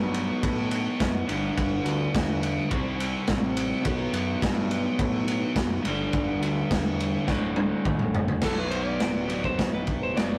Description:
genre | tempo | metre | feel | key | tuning
garage rock duo or trio | 105 BPM | 4/4 | straight | unclear | A4 = 440 Hz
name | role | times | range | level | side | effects
crunchy overdriven guitar | riff | 0.0-10.4 s | D2 to C4 | -30 LUFS | equal | none
growling picked electric bass | bass | 0.0-10.4 s | D1 to A2 | -36 LUFS | equal | overdrive
crunchy breakbeat drum kit | drums | 0.1-10.3 s | crash cymbal, kick drum, ride cymbal, snare drum, toms | -30 LUFS | equal | none
electric slide guitar | melody | 8.4-10.4 s | A4 to D5 | -34 LUFS | equal | none
room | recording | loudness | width
light reverb | rough rehearsal-room recording, warm saturation | -26 LUFS | mono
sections
0.0-8.4 A section; 8.4-10.4 B section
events
drum fill 7.3-8.4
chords
0.0 B5; 1.3 G5; 2.7 C5; 3.8 B5; 5.8 G5; 7.3 D5; 8.4 Bm

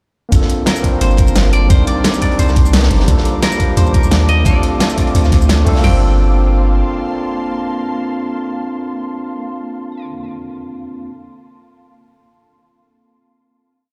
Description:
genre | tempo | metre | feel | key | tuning
liquid drum and bass | 174 BPM | 4/4 | swing 54% on 16ths | G minor | A4 = 440 Hz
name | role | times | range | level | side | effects
overdriven tine electric piano | accompaniment | 0.3-11.1 s | G3 to D5 | -22 LUFS | equal | digital delay
ethereal airy pad | sustained chords | 1.0-9.4 s | Bb3 to D6 | -30 LUFS | equal | ensemble chorus, built-in reverb, sidechain pumping
long sustained 808-style bass | bass | 0.3-6.8 s | G1 to Eb2 | -15 LUFS | equal | tube saturation
crunchy breakbeat drum kit | drums | 0.3-5.8 s | hi-hat, snare drum | -28 LUFS | equal | high-pass filter on hats, studio reverb, high-pass filter on snare, high-pass filter on room
pop drum kit | drums | 0.3-5.9 s | crash cymbal, kick drum, snare drum, toms | -16 LUFS | equal | studio reverb
pop drum kit | drums | 0.3-5.7 s | hi-hat, shaker, snare drum | -22 LUFS | equal | studio reverb
clean electric guitar | melody | 0.7-10.1 s | Bb4 to G5 | -26 LUFS | equal | phaser, digital delay
room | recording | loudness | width
little or no reverb | played on a big sound system in a bare room, large studio reverb | -14 LUFS | mono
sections
0.3-5.8 drop; 5.8-8.6 final chord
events
drop 0.3-5.8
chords
0.3 Gm11; 1.7 Cm9; 3.1 Ebmaj9#11; 4.5 Dm7; 5.8 Gm11

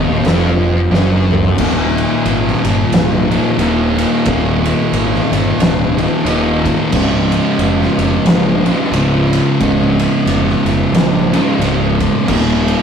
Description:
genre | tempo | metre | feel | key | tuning
stoner and doom metal | 90 BPM | 4/4 | swing 58% on 8ths | unclear | A4 = 439 Hz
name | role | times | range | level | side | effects
thick fuzz guitar | riff | 0.0-12.8 s | Db2 to Eb3 | -14 LUFS | equal | distortion
growling fingered electric bass | bass | 0.0-12.7 s | Db1 to Bb1 | -18 LUFS | equal | overdrive, tube saturation
oversized low-tuned drum kit | drums | 0.2-12.8 s | crash cymbal, kick drum, ride cymbal, snare drum, toms | -17 LUFS | equal | none
room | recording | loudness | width
light reverb | rough rehearsal-room recording, warm saturation | -11 LUFS | side -7 dB against mid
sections
0.0-1.6 A section; 1.6-12.8 B section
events
drum fill 0.9-1.6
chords
0.0 N.C.; 1.6 Eb5; 6.9 Db; 12.3 Eb5

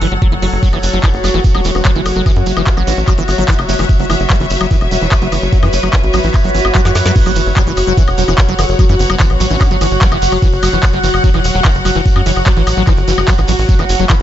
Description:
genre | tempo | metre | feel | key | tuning
psychedelic trance | 147 BPM | 4/4 | straight | F# minor | A4 = 439 Hz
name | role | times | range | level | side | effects
overtone-sweeping drone | sustained chords | 0.0-14.2 s | F#3 to B4 | -20 LUFS | equal | chorus, built-in reverb, phaser, sidechain pumping
liquid acid bass | riff | 0.0-14.2 s | E3 to F#3 | -20 LUFS | equal | chorus, auto-pan, sidechain pumping, digital delay
tight sequencer bass | bass | 0.0-14.2 s | E1 to F#2 | -16 LUFS | equal | none
garage drum kit | drums | 0.0-14.2 s | crash cymbal, handclaps, hi-hat, snare drum, woodblock | -20 LUFS | left 2 dB | none
rich studio string section | texture | 0.0-14.2 s | F#4 to B5 | -20 LUFS | left 2 dB | sidechain pumping
electronic kick drum | drums | 0.2-14.2 s | none | -12 LUFS | equal | none
shekere | percussion | 0.6-14.2 s | none | -26 LUFS | right 5 dB | none
vowel-sweep wobble bass | second line | 1.8-2.7, 8.3-9.7 s | F#3 to C#4 | -28 LUFS | left 3 dB | wide subtle chorus, sidechain pumping, high-pass filter, digital delay
swell and impact | sound effects | 6.4-8.8 s | none | -23 LUFS | right 2 dB | none
room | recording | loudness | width
little or no reverb | nothing above 7.7 kHz | -10 LUFS | side -11 dB against mid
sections
0.0-7.2 A section; 7.2-14.2 B section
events
swell 6.4-7.2; drum fill 6.9-7.2; drop 7.2-14.2; impact 7.2-8.8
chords
0.0 F#5

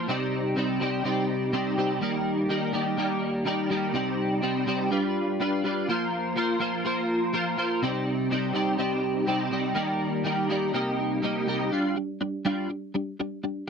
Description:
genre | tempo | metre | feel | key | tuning
rock | 124 BPM | 4/4 | straight | C minor | A4 = 437 Hz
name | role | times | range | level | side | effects
twelve-string electric guitar | solo | 0.0-13.7 s | C3 to Eb5 | -25 LUFS | equal | ensemble chorus
room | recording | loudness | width
light reverb | dry, close 1970s-style studio recording | -24 LUFS | side -6 dB against mid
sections
0.0-11.7 A section; 11.7-13.7 B section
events
none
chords
0.1 Cmadd9; 2.0 Ebmaj7; 3.9 Cmadd9; 4.9 G7; 5.9 Fsus4; 7.8 Cmadd9; 9.8 Ebmaj7; 10.7 Cm7; 11.7 G5

